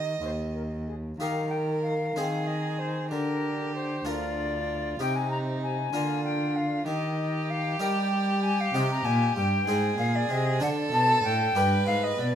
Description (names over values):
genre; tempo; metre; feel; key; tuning
classical, baroque-style sonata movement with continuo; 64 BPM (dotted quarters); 6/8; straight; Eb major, C minor from 8.7 s; A4 = 440 Hz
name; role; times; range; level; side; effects
silver concert flute; melody; 0.0-12.3 s; G4 to Bb5; -29 LUFS; left 3 dB; none
rich violin; second line; 0.0-12.3 s; Eb4 to Eb5; -32 LUFS; right 4 dB; none
harpsichord; accompaniment; 0.0-12.3 s; D2 to C5; -35 LUFS; left 2 dB; none
dark cello; bass; 0.0-12.3 s; D2 to G3; -29 LUFS; equal; none
room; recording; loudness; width
light reverb; none; -25 LUFS; side -9 dB against mid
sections
0.0-1.2 A section; 1.2-12.3 B section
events
none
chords
0.0 Eb; 2.2 Ab6/Eb; 3.1 Bb/D; 5.0 Cm; 5.9 Bb/D; 6.9 Eb; 8.7 Cm; 9.7 Ab; 10.6 D5; 11.6 G